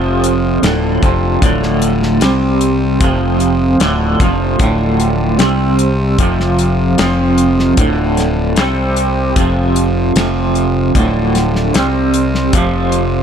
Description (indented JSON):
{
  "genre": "psychedelic rock",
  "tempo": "76 BPM",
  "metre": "4/4",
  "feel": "straight",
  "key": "D minor",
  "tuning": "A4 = 444 Hz",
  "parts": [
    { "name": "combo organ", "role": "sustained chords", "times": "0.0-13.2 s", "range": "C3 to C5", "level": "-23 LUFS", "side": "right 4 dB", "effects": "spring reverb" },
    { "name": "twangy electric guitar", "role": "riff", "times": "0.0-13.2 s", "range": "D2 to C4", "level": "-14 LUFS", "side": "right 1 dB", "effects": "tremolo, double-tracked left and right" },
    { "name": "fuzz fingered electric bass", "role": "bass", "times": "0.0-13.2 s", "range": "D1 to C2", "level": "-17 LUFS", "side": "equal", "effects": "overdrive" },
    { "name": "damped 70s drum kit", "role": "drums", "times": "0.2-13.1 s", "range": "hi-hat, kick drum, snare drum", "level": "-17 LUFS", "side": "left 1 dB", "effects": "none" }
  ],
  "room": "light reverb, small room reverb",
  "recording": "none",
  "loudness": "-11 LUFS",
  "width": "side -8 dB against mid",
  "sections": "0.0-13.2 A section",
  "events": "none",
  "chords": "0.0 F5; 0.6 Dm; 2.2 C5; 3.0 F5; 3.8 Dm; 5.4 C5; 6.2 F5; 7.8 Dm; 8.6 C5; 9.4 F5; 11.0 Dm; 11.7 C5; 12.5 F5",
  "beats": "0.63 | 1.42 2.22 3.01 3.81 | 4.60 5.40 6.19 6.99 | 7.78 8.57 9.37 10.16 | 10.95 11.74 12.54"
}